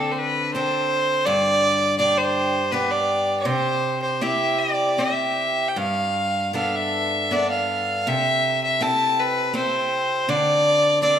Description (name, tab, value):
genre	celtic folk, Celtic slow air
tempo	81 BPM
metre	3/4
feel	rubato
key	unclear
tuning	A4 = 440 Hz
part	clear fiddle	melody	0.0-11.2 s	A4 to A5	-20 LUFS	equal	none
part	picked steel-string acoustic guitar	accompaniment	0.0-11.2 s	G2 to A4	-25 LUFS	equal	none
room	moderate recital hall reverb, RT60 1.6 s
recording	minimal, uncompressed stereo recording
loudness	-19 LUFS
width	side -9 dB against mid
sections	0.0-11.2 A section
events	none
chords	0.0 D5; 1.3 G; 3.5 C; 5.8 Gadd9; 8.1 C6; 10.3 D5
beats	0.55 | 1.27 1.99 2.72 | 3.46 4.21 4.99 | 5.77 6.54 7.30 | 8.07 8.81 9.54 | 10.29 11.02